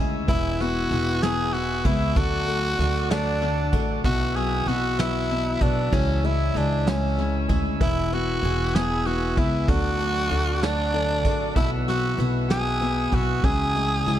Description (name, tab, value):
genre	six-eight pop ballad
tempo	64 BPM (dotted quarters)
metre	6/8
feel	straight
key	E mixolydian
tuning	A4 = 440 Hz
part	warm upright piano	accompaniment	0.0-14.2 s	B2 to E4	-28 LUFS	left 6 dB	tape echo
part	tonewheel organ	sustained chords	0.0-14.2 s	A4 to E6	-34 LUFS	equal	slow rotary speaker
part	direct-recorded clean electric guitar	arpeggios	0.0-14.2 s	B2 to G#4	-34 LUFS	right 10 dB	none
part	upright bass	bass	0.0-14.2 s	E1 to D2	-26 LUFS	equal	none
part	breathy tenor saxophone	melody	0.3-14.2 s	C#4 to G#4	-26 LUFS	right 1 dB	tape echo
part	vintage brush drum kit	drums	0.3-14.2 s	kick drum, ride cymbal, snare drum	-27 LUFS	equal	none
room	light reverb, small room ambience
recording	echo-heavy mix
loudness	-21 LUFS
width	side -11 dB against mid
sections	0.0-14.2 A section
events	none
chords	0.3 E; 2.2 D; 4.0 Bsus4; 5.9 C#m; 7.8 E; 9.7 D; 11.6 Bsus4; 13.4 C#m